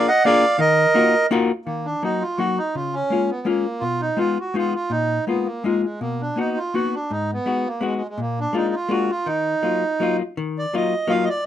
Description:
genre	musette waltz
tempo	166 BPM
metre	3/4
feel	swing 54% on 8ths, rubato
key	Eb harmonic minor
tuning	A4 = 441 Hz
part	accordion	melody	0.0-11.4 s	Ab3 to Gb5	-21 LUFS	right 2 dB	none
part	hollow-body jazz guitar	accompaniment	0.0-11.3 s	Ab2 to Bb4	-22 LUFS	left 4 dB	none
room	light reverb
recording	minimal, uncompressed stereo recording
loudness	-19 LUFS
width	side -11 dB against mid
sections	0.0-1.7 A section; 1.7-10.4 B section; 10.4-11.5 A section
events	none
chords	0.0 Bb7; 0.6 Ebmadd9; 1.7 Ebm; 2.8 Bbm7/Db; 3.8 Fm7b5/Cb; 4.9 Bb7sus4; 6.0 Bmaj7; 7.1 Abm7; 8.2 Bb7; 9.3 Ebmadd9

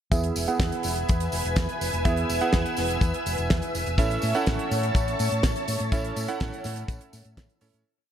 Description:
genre	italo disco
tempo	124 BPM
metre	4/4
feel	straight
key	E major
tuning	A4 = 444 Hz
part	string machine, full ensemble	sustained chords	0.1-7.8 s	B4 to E6	-30 LUFS	equal	ensemble chorus
part	clear electric grand piano	stabs	0.1-7.8 s	B3 to F#5	-30 LUFS	right 4 dB	low-pass filter, ping-pong delay
part	hollow-body short-scale fingered electric bass	bass	0.1-7.8 s	E1 to A2	-30 LUFS	left 1 dB	none
part	damped 70s drum kit	drums	0.1-7.8 s	hi-hat, snare drum, tambourine	-31 LUFS	right 1 dB	none
part	kick drum	drums	0.1-7.5 s	none	-25 LUFS	left 1 dB	none
room	light reverb, studio ambience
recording	none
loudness	-23 LUFS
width	side -10 dB against mid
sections	0.1-7.9 verse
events	filter sweep on electric grand piano 0.1-7.9; fade-out 5.3-7.9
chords	0.1 E; 4.0 A

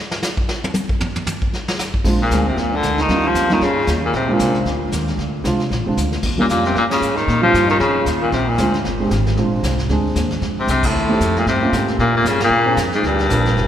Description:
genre	jazz, small-group swing and bop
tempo	229 BPM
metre	4/4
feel	swing 58% on 8ths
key	Bb mixolydian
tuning	A4 = 440 Hz
part	vintage brush drum kit	drums	0.1-13.7 s	brushed snare drum, crash cymbal, hi-hat, kick drum, ride cymbal, snare drum, toms	-24 LUFS	equal	none
part	warm concert grand piano	accompaniment	2.0-13.7 s	G3 to Bb4	-22 LUFS	right 1 dB	none
part	upright bass	bass	2.0-13.7 s	F1 to Bb2	-21 LUFS	equal	none
part	clear baritone saxophone	melody	2.2-13.7 s	G2 to F3	-19 LUFS	left 2 dB	none
part	breathy alto saxophone	second line	2.2-13.7 s	G3 to F4	-24 LUFS	right 2 dB	none
room	wet cathedral reverb, RT60 4.3 s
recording	recorded in a church or concert hall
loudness	-15 LUFS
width	side -10 dB against mid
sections	0.0-2.0 A section; 2.0-13.7 B section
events	drum solo 0.0-2.0; drum fill 6.0; band accent 6.9, 10.8, 12.4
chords	0.0 N.C.; 2.0 Bb7; 3.1 Eb7; 4.1 Bb7; 6.2 Eb7; 8.3 Bb7; 10.4 F7; 11.5 Bbm13/G; 12.5 Bb

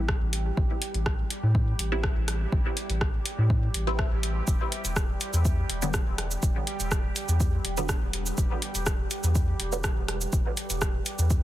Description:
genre	dub techno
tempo	123 BPM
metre	4/4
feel	straight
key	A minor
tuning	A4 = 440 Hz
part	filtered dub chord stab	stabs	0.0-10.0 s	D3 to E4	-36 LUFS	equal	phaser, sidechain pumping, dub echo
part	round analog bass	bass	0.0-11.4 s	E1 to A2	-28 LUFS	equal	sidechain pumping
part	bubbling stepped-filter texture	texture	0.0-11.4 s	G3 to G4	-37 LUFS	right 3 dB	chorus, built-in reverb, sidechain pumping
part	deep house drum kit	drums	0.1-11.4 s	cabasa, hi-hat, rim click	-33 LUFS	equal	soft clipping on snare
part	electronic kick drum	drums	0.1-11.4 s	none	-27 LUFS	equal	none
room	little or no reverb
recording	dense, heavily limited modern master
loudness	-24 LUFS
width	side -14 dB against mid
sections	0.0-11.4 A section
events	none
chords	0.0 Am7; 4.5 Em7

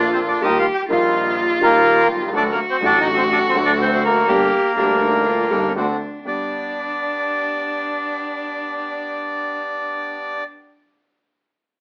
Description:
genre	tango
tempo	124 BPM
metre	4/4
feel	rubato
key	G minor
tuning	A4 = 438 Hz
part	bandoneon	melody	0.0-10.4 s	Bb3 to G5	-22 LUFS	equal	none
part	warm cello	second line	0.0-10.4 s	C#4 to G4	-25 LUFS	equal	none
part	dark upright piano	accompaniment	0.0-10.4 s	G1 to G4	-27 LUFS	equal	none
part	bandoneon	stabs	0.0-10.4 s	G3 to G4	-31 LUFS	equal	none
part	clear double bass	bass	0.0-6.5 s	G1 to Eb2	-30 LUFS	equal	none
room	moderate studio reverb, RT60 0.8 s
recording	band playing live in one room, AM radio sound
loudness	-19 LUFS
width	mono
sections	0.0-6.3 A section; 6.3-10.1 B section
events	none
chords	0.4 Ebadd9; 2.3 D; 4.3 Gm; 5.8 D7; 6.3 G

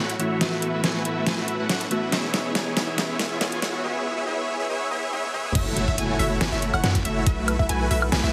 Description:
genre	future bass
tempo	140 BPM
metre	4/4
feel	swing 53% on 16ths, half-time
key	F# minor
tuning	A4 = 439 Hz
part	glassy digital keys	accompaniment	0.0-3.9 s	E3 to G#4	-34 LUFS	equal	chorus, sidechain pumping, tape echo
part	dense compressed supersaw	riff	0.0-8.3 s	A3 to G#5	-28 LUFS	equal	sidechain pumping, low-pass filter, tape echo
part	riser and impact	sound effects	1.2-7.3 s	none	-39 LUFS	equal	none
part	dubstep drum kit	drums	0.1-8.2 s	crash cymbal, hi-hat, snare drum, toms, woodblock	-29 LUFS	equal	none
part	unison pluck	arpeggios	5.6-8.3 s	E5 to G#5	-33 LUFS	equal	sidechain pumping
part	long sustained 808-style bass	bass	5.6-8.3 s	F#1 to F#2	-28 LUFS	equal	sidechain pumping
part	electronic kick drum	drums	5.6-7.7 s	none	-26 LUFS	equal	none
room	light reverb, digital ambience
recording	heavily compressed radio sound, multiband compression, high-pass filter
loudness	-24 LUFS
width	mono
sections	0.0-5.6 A section; 5.6-8.3 B section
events	build-up 0.0-5.6; drum fill 0.0-3.8, 5.1-5.6; drop 5.6-8.3; impact 5.6-7.3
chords	0.4 B7sus4; 2.1 C#m7; 5.6 F#m7; 7.3 B7sus4

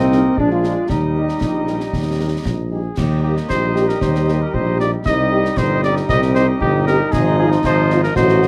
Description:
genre	military-style march for wind band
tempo	116 BPM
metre	2/4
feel	straight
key	Eb major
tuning	A4 = 437 Hz
part	clear woodwind section	second line	0.0-8.5 s	F4 to Eb5	-30 LUFS	equal	none
part	warm euphonium	second line	0.0-8.5 s	Bb3 to G4	-23 LUFS	equal	none
part	bright trombone section	sustained chords	0.0-8.5 s	F3 to Eb4	-28 LUFS	equal	none
part	mellow tuba	bass	0.0-8.5 s	G1 to Eb2	-22 LUFS	equal	none
part	mellow cornet	melody	0.1-8.5 s	G4 to Eb5	-23 LUFS	equal	none
part	dark French horn section	accompaniment	0.1-8.5 s	G3 to G4	-24 LUFS	equal	none
part	concert snare drum, concert bass drum and clash cymbals	drums	0.1-8.5 s	none	-27 LUFS	equal	none
room	light reverb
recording	close, detailed microphones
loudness	-17 LUFS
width	mono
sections	0.0-3.0 A section; 3.0-8.5 A section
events	none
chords	0.4 Bb7; 0.9 Eb; 5.0 Cm; 7.1 Fm7/Ab

